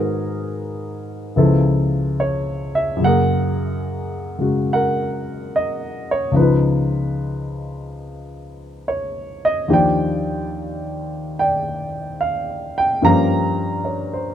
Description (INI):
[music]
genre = jazz ballad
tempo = 72 BPM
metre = 4/4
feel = swing 66% on 8ths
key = unclear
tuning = A4 = 438 Hz
[part]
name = warm baby grand piano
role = solo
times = 0.0-14.3 s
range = Db2 to Bb5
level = -18 LUFS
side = equal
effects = none
[sound]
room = light reverb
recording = close, detailed microphones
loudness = -18 LUFS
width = side -10 dB against mid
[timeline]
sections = 0.0-14.3 A section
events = none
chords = 0.0 Abm7; 1.3 Db7alt; 3.0 Gbadd9; 6.3 Db9; 9.7 Ebmaj9; 13.0 Gm7b5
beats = 0.50 1.33 2.16 | 2.99 3.82 4.65 5.49 | 6.32 7.16 7.99 8.83 | 9.67 10.50 11.34 12.17 | 13.00 13.83